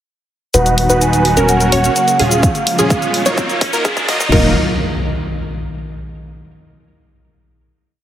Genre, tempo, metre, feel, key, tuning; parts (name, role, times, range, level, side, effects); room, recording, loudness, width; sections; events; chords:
EDM, festival progressive house; 127 BPM; 4/4; straight; Eb minor; A4 = 440 Hz
vibraphone with soft mallets; melody; 0.5-4.5 s; Eb5 to Ab5; -19 LUFS; right 2 dB; tape echo
supersaw pad; sustained chords; 0.5-4.5 s; Db3 to F#4; -23 LUFS; left 1 dB; sidechain pumping
wide unison pluck; arpeggios; 0.5-4.5 s; Ab4 to Eb5; -21 LUFS; equal; sidechain pumping, tape echo
supersaw chords; riff; 0.5-4.5 s; Gb3 to Eb5; -19 LUFS; right 1 dB; cassette tape, sidechain pumping, low-pass filter, tape echo
saturated sub bass; bass; 0.5-4.5 s; D#1; -18 LUFS; equal; sidechain pumping
big-room dance drum kit; drums; 0.5-4.4 s; crash cymbal, hi-hat, shaker; -21 LUFS; left 1 dB
riser and impact; sound effects; 2.2-6.2 s; -22 LUFS; left 1 dB
electronic kick drum; drums; 2.4-4.4 s; -17 LUFS; equal
moderate lush hall reverb, RT60 2.4 s; heavily compressed radio sound, high-pass filter; -12 LUFS; side -11 dB against mid
0.5-4.3 build; 4.3-6.2 final chord
build-up 0.5-4.3; filter sweep on supersaw synth 0.5-4.3; filter sweep on synth pluck 0.5-4.3; filter sweep 0.5-4.3; riser 2.2-4.3; drum fill 2.4-4.3
0.5 B/D#; 1.5 Ebmadd9